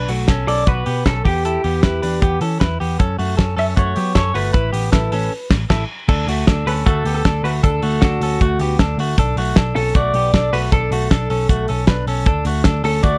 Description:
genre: jangly indie pop.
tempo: 155 BPM.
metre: 4/4.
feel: straight.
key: D major.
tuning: A4 = 440 Hz.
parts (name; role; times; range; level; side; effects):
direct-recorded clean electric guitar; arpeggios; 0.0-13.2 s; A3 to B4; -26 LUFS; equal; slapback echo.
vintage muted picked electric bass; bass; 0.0-13.2 s; G1 to F#3; -23 LUFS; equal; none.
cloth-damped thuddy drum kit; drums; 0.1-13.1 s; crash cymbal, hi-hat, kick drum, snare drum; -20 LUFS; equal; none.
electric guitar through a small old amp; melody; 0.5-13.2 s; F#4 to E5; -24 LUFS; equal; spring reverb, slapback echo.
room: little or no reverb.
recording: dry, close 1970s-style studio recording.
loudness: -18 LUFS.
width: mono.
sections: 0.0-6.1 A section; 6.1-13.2 B section.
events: band accent 5.3-6.1.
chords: 0.0 Bsus2; 1.3 Em; 3.0 F#m; 4.5 Asus2; 6.1 D; 9.2 Bm7; 12.3 D.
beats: 0.29 0.67 1.06 | 1.45 1.83 2.22 2.61 | 3.00 3.38 3.77 4.16 | 4.54 4.93 5.32 5.70 | 6.09 6.47 6.86 7.25 | 7.63 8.02 8.41 8.79 | 9.18 9.56 9.95 10.34 | 10.72 11.11 11.49 11.88 | 12.27 12.65 13.04.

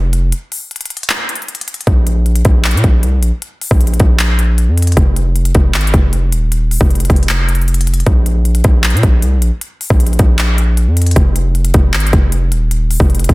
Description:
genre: hip hop, trap.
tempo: 155 BPM.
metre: 4/4.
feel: half-time.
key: unclear.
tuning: A4 = 440 Hz.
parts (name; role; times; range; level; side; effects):
hard-hitting 808-style bass; bass; 0.0-13.3 s; Eb1 to Bb2; -12 LUFS; equal; none.
trap drum kit; drums; 0.1-13.3 s; handclaps, hi-hat, kick drum; -13 LUFS; equal; none.
room: little or no reverb.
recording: dense, heavily limited modern master.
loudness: -10 LUFS.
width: side -22 dB against mid.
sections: 0.0-1.9 A section; 1.9-13.3 B section.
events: break 0.3-1.9.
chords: none.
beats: | 0.32 0.71 1.10 1.48 | 1.87 2.26 2.65 3.03 | 3.42 3.81 4.19 4.58 | 4.97 5.36 5.74 6.13 | 6.52 6.90 7.29 7.68 | 8.06 8.45 8.84 9.23 | 9.61 10.00 10.39 10.78 | 11.16 11.55 11.94 12.32 | 12.71 13.10.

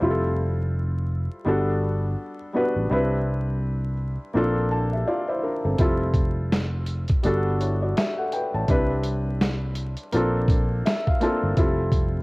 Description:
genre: lo-fi hip hop.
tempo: 83 BPM.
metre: 4/4.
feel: swing 59% on 16ths.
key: F major.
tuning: A4 = 441 Hz.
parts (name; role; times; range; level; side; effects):
felt-muted upright piano; accompaniment; 0.0-12.2 s; G3 to A5; -25 LUFS; equal; cassette tape.
sustaining fretless electric bass; bass; 0.0-12.2 s; F1 to C2; -25 LUFS; equal; none.
dusty soul sampler-style drum kit; drums; 5.8-12.1 s; hi-hat, kick drum, snare drum; -23 LUFS; equal; cassette tape.
room: digital ambience.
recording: home recording on cassette, vinyl crackle.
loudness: -21 LUFS.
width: side -24 dB against mid.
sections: 0.0-12.2 A section.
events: felt piano fill 4.3-5.8, 10.5-11.6.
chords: 0.0 Fmaj9; 1.5 Gmaj9; 2.9 Cmaj9; 4.3 Bbmaj9; 5.8 Fmaj9; 7.2 Gmaj9; 8.7 Cmaj9; 10.1 Bbmaj9; 11.6 Fmaj9.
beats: | 0.01 0.73 1.46 2.18 | 2.90 3.62 4.35 5.07 | 5.79 6.52 7.24 7.96 | 8.69 9.41 10.13 10.85 | 11.58.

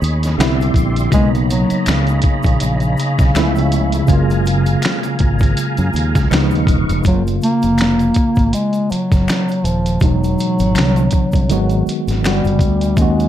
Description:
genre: R&B, neo-soul.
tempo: 81 BPM.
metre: 4/4.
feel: swing 57% on 16ths.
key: F# major.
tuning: A4 = 440 Hz.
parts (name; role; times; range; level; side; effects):
tine electric piano; accompaniment; 0.0-13.3 s; B2 to G#4; -20 LUFS; right 1 dB; overdrive, fast stereo tremolo.
tonewheel organ; sustained chords; 0.0-7.0 s; G4 to C#6; -25 LUFS; right 1 dB; slow rotary speaker, overdrive, chorus vibrato.
fretless electric bass; bass; 0.0-13.3 s; D#1 to F#2; -18 LUFS; equal; none.
dusty soul sampler-style drum kit; drums; 0.0-13.3 s; finger snaps, hi-hat, kick drum, snare drum; -18 LUFS; equal; none.
egg shaker and finger snaps; percussion; 0.0-13.3 s; none; -34 LUFS; left 7 dB; none.
breathy bass clarinet; melody; 1.1-13.3 s; C#3 to A#3; -18 LUFS; left 1 dB; slapback echo.
room: digital ambience.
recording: dark, warm production.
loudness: -13 LUFS.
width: side -11 dB against mid.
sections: 0.0-7.0 A section; 7.0-13.3 B section.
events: none.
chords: 0.4 Cmaj9; 1.1 Bmaj9; 3.3 C#7alt; 4.1 F#maj9; 6.3 C#9; 7.0 F#maj7; 10.0 Emaj9; 10.8 Cmaj9; 11.5 G#m7; 12.2 Gmaj7.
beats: 0.38 | 1.12 1.86 2.60 3.34 | 4.08 4.82 5.57 6.31 | 7.05 7.79 8.53 9.27 | 10.01 10.75 11.49 12.23 | 12.97.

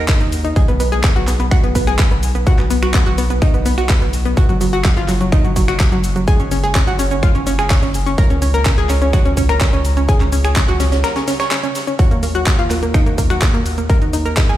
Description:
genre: progressive house.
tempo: 126 BPM.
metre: 4/4.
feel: straight.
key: F# major.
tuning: A4 = 440 Hz.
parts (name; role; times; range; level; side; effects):
analog pluck; arpeggios; 0.0-14.6 s; F#3 to C#5; -19 LUFS; equal; chorus, sidechain pumping, dub echo.
saturated sub bass; bass; 0.0-14.6 s; F#1 to D#2; -19 LUFS; equal; sidechain pumping.
deep house drum kit; drums; 0.1-14.6 s; cabasa, finger snaps, handclaps, hi-hat; -24 LUFS; equal; none.
electronic kick drum; drums; 0.1-14.5 s; none; -14 LUFS; equal; none.
soft-mallet drum kit; drums; 0.1-14.5 s; hi-hat, snare drum; -32 LUFS; left 1 dB; none.
room: digital ambience.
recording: played on a big sound system in a bare room, stone room reverb.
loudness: -13 LUFS.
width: side -13 dB against mid.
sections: 0.0-14.6 A section.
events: break 11.0-12.0.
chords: 0.0 D#5; 0.6 B5; 4.4 F#5; 8.2 C#5; 12.0 D#5.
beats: 0.09 | 0.56 1.04 1.51 1.99 | 2.47 2.94 3.42 3.90 | 4.37 4.85 5.32 5.80 | 6.28 6.75 7.23 7.71 | 8.18 8.66 9.13 9.61 | 10.09 10.56 11.04 11.51 | 11.99 12.47 12.94 13.42 | 13.89 14.37.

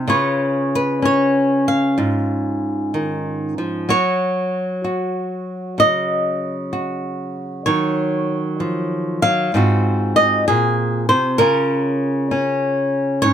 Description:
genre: solo jazz.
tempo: 64 BPM.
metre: 4/4.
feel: swing 67% on 8ths, rubato.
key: unclear.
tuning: A4 = 436 Hz.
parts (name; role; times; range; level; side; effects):
flamenco guitar; solo; 0.0-13.3 s; Ab2 to F5; -16 LUFS; equal; none.
room: little or no reverb.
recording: close, detailed microphones.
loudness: -17 LUFS.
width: side -9 dB against mid.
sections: 0.0-13.3 A section.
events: none.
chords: 0.1 Db9; 3.9 Gb5; 7.7 Ebm7; 9.5 Ab13; 11.4 Db6.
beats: | 0.08 1.02 1.97 2.93 | 3.89 4.85 5.79 6.73 | 7.67 8.61 9.55 10.48 | 11.40 12.32 13.24.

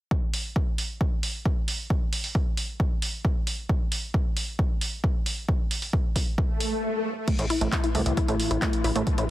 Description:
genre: driving peak-time techno.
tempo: 134 BPM.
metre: 4/4.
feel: straight.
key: A minor.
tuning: A4 = 441 Hz.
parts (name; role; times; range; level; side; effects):
electronic kick drum; drums; 0.1-9.2 s; none; -25 LUFS; equal; none.
punchy analog drum machine; drums; 0.3-9.3 s; crash cymbal, handclaps, hi-hat; -31 LUFS; right 1 dB; sidechain pumping on hats, sidechain pumping on cymbals.
swell; sound effects; 6.5-7.3 s; none; -30 LUFS; left 1 dB; none.
resonant blip pluck; riff; 7.3-9.2 s; A3 to E4; -28 LUFS; equal; chorus, sidechain pumping, ping-pong delay.
metallic inharmonic drone; drone; 7.6-9.3 s; A2 to E3; -31 LUFS; left 2 dB; chorus, built-in reverb, sidechain pumping.
gritty driven synth bass; bass; 7.4-9.2 s; A1 to C2; -26 LUFS; equal; sidechain pumping.
room: little or no reverb.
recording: heavily compressed radio sound, multiband compression.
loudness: -24 LUFS.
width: side -15 dB against mid.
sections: 0.1-7.3 A section; 7.3-9.3 B section.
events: swell 6.5-7.3; stop 6.8-7.3.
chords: 0.1 N.C.; 7.3 Am.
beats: | 0.11 0.56 1.01 1.46 | 1.90 2.35 2.80 3.25 | 3.69 4.14 4.59 5.04 | 5.49 5.93 6.38 6.83 | 7.28 7.72 8.17 8.62 | 9.07.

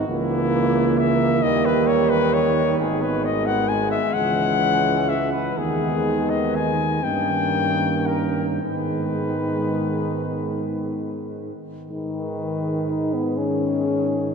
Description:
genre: classical, hymn-like piece for brass band.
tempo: 35-45 BPM (dotted quarters).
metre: 6/8.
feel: rubato.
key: G# minor.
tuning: A4 = 443 Hz.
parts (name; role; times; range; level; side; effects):
mellow French horn section; second line; 0.0-14.3 s; A#3 to G#4; -26 LUFS; right 7 dB; none.
clear trombone; accompaniment; 0.0-14.3 s; D#3 to E3; -28 LUFS; right 3 dB; none.
warm euphonium; accompaniment; 0.0-14.3 s; D#3 to D#4; -27 LUFS; left 2 dB; none.
warm tuba; bass; 0.0-14.3 s; G#1 to G#2; -27 LUFS; equal; none.
dark cornet; melody; 0.1-14.3 s; E4 to G#5; -25 LUFS; left 6 dB; none.
room: wet cathedral reverb, RT60 5.4 s.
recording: dark, warm production.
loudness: -19 LUFS.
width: side -5 dB against mid.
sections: 0.0-11.9 A section; 11.9-14.3 B section.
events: none.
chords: 0.1 A#dim/C#; 1.4 D#; 2.8 G#m; 4.2 C#m; 5.6 G#m/D#; 7.0 D#7/G; 8.6 G#m.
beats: | 0.08 1.43 | 2.80 4.16 | 5.58 7.05 | 8.63 10.27 | 11.91 13.39.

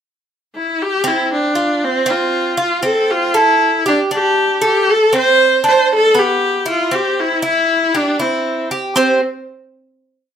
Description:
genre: latin.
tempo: 117 BPM.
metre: 4/4.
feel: straight.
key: C major.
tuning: A4 = 440 Hz.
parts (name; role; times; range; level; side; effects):
clear viola; melody; 0.5-9.2 s; C4 to C5; -14 LUFS; left 1 dB; none.
Cuban tres; arpeggios; 1.0-9.2 s; B3 to C5; -17 LUFS; right 2 dB; none.
room: moderate studio reverb, RT60 0.6 s.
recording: none.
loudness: -13 LUFS.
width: side -8 dB against mid.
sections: 0.0-0.8 pickup bar; 0.8-9.0 A section; 9.0-10.4 final chord.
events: none.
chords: 0.0 N.C.; 0.8 F5; 2.8 C6; 3.8 G5; 4.9 Am; 5.9 G; 6.9 C; 9.0 C5.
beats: 0.27 | 0.78 1.29 1.80 2.31 | 2.83 3.34 3.85 4.36 | 4.87 5.38 5.89 6.41 | 6.92 7.43 7.94 8.45 | 8.96.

